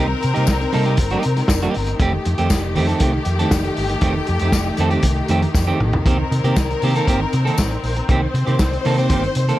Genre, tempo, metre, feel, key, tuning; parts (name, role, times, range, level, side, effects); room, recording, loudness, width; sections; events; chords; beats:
disco; 118 BPM; 4/4; straight; A4 = 440 Hz
semi-hollow electric guitar; accompaniment; 0.0-9.6 s; Eb3 to A4; -22 LUFS; right 4 dB
clear studio string section; sustained chords; 0.0-9.6 s; Eb3 to C5; -23 LUFS; left 3 dB
hollow-body short-scale fingered electric bass; bass; 0.0-9.5 s; F1 to C3; -21 LUFS; equal
vintage drum kit; drums; 0.2-9.6 s; hi-hat, kick drum, snare drum, toms; -21 LUFS; equal
tambourine; percussion; 0.5-8.7 s; -31 LUFS; left 14 dB
small room ambience; -16 LUFS; side -15 dB against mid
0.0-9.6 A section
drum fill 5.6-6.1
0.0 F9
0.48 0.98 1.49 | 2.00 2.51 3.01 3.52 | 4.03 4.54 5.04 5.55 | 6.06 6.57 7.08 7.58 | 8.09 8.60 9.10